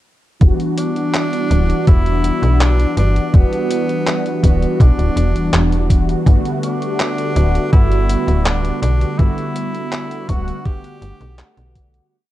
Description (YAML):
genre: vaporwave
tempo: 82 BPM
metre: 4/4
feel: straight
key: G major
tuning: A4 = 440 Hz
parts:
  - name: mellow synth brass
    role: accompaniment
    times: 0.4-12.1 s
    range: D3 to F#5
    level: -20 LUFS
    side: equal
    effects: phaser, lush chorus, cassette tape, tape echo
  - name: slap-like FM bass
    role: bass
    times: 0.4-12.0 s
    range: D1 to B1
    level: -16 LUFS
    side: equal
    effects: none
  - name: detuned 8-bit digital drum machine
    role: drums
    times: 0.4-12.1 s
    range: handclaps, hi-hat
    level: -24 LUFS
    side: equal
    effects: studio reverb
  - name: electronic kick drum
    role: drums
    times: 0.4-11.9 s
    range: none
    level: -12 LUFS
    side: equal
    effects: studio reverb
  - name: edgy tenor saxophone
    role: melody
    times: 0.8-11.8 s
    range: B3 to G4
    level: -25 LUFS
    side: left 1 dB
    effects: tape echo
room: digital ambience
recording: dark, warm production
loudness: -14 LUFS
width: side -14 dB against mid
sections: 0.4-12.1 groove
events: fade-out 8.2-12.1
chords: 0.4 Em9; 6.3 Gmaj9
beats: | 0.41 1.14 1.88 2.61 | 3.34 4.07 4.80 5.53 | 6.27 7.00 7.73 8.46 | 9.19 9.93 10.66 11.39